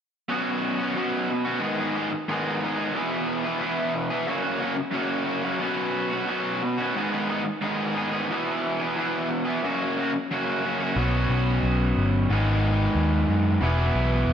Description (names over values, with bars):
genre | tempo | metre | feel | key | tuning
rock | 90 BPM | 4/4 | straight | B major | A4 = 440 Hz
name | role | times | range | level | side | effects
raw garage guitar | riff | 0.3-14.3 s | E2 to G#4 | -24 LUFS | equal | overdrive, slapback echo
picked electric bass | bass | 11.0-14.3 s | E1 to F#2 | -23 LUFS | equal | none
room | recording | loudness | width
moderate scoring stage reverb, RT60 2.0 s | big arena sound | -23 LUFS | side -8 dB against mid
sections
0.3-11.0 A section; 11.0-14.3 B section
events
none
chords
0.3 Bsus2; 1.6 G#m; 3.0 E; 4.3 F#; 5.6 Bsus2; 7.0 G#m; 8.3 E; 9.6 F#; 11.0 Bsus2; 12.3 G#m; 13.6 E